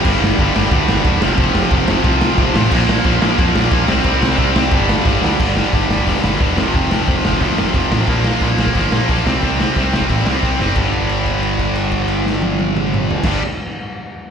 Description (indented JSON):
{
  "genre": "punk rock",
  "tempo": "179 BPM",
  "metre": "4/4",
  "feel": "straight",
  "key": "unclear",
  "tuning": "A4 = 442 Hz",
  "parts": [
    { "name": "tight distorted guitar", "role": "riff", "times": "0.0-13.4 s", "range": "F2 to C4", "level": "-19 LUFS", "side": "left 13 dB", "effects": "distortion" },
    { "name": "tight distorted guitar", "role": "riff", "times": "0.0-13.4 s", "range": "F2 to C4", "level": "-19 LUFS", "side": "right 13 dB", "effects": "distortion, slapback echo" },
    { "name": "raw garage drum kit", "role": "drums", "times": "0.0-13.3 s", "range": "crash cymbal, hi-hat, kick drum, ride cymbal, snare drum, toms", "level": "-19 LUFS", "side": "equal", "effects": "none" },
    { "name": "fuzz picked electric bass", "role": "bass", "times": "0.1-13.4 s", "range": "E1 to F2", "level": "-20 LUFS", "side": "equal", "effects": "overdrive" }
  ],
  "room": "studio reverb",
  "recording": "live gig heard through the venue's PA, club reverb",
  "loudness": "-13 LUFS",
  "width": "side -7 dB against mid",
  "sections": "0.0-5.4 A section; 5.4-10.8 B section; 10.8-13.4 C section",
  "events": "drum fill 5.1-5.4, 10.6; held note 10.8-13.2",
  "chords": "0.0 G5; 1.2 F5; 2.7 Bb5; 3.9 C5; 4.7 G5; 6.6 F5; 8.1 Bb5; 9.2 C5; 10.8 G5",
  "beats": "| 0.04 0.38 0.71 1.04 | 1.38 1.71 2.05 2.38 | 2.71 3.05 3.38 3.72 | 4.05 4.38 4.72 5.05 | 5.39 5.72 6.06 6.39 | 6.73 7.06 7.40 7.74 | 8.07 8.41 8.74 9.08 | 9.41 9.75 10.08 10.42 | 10.76 11.09 11.43 11.76 | 12.10 12.44 12.77 13.11"
}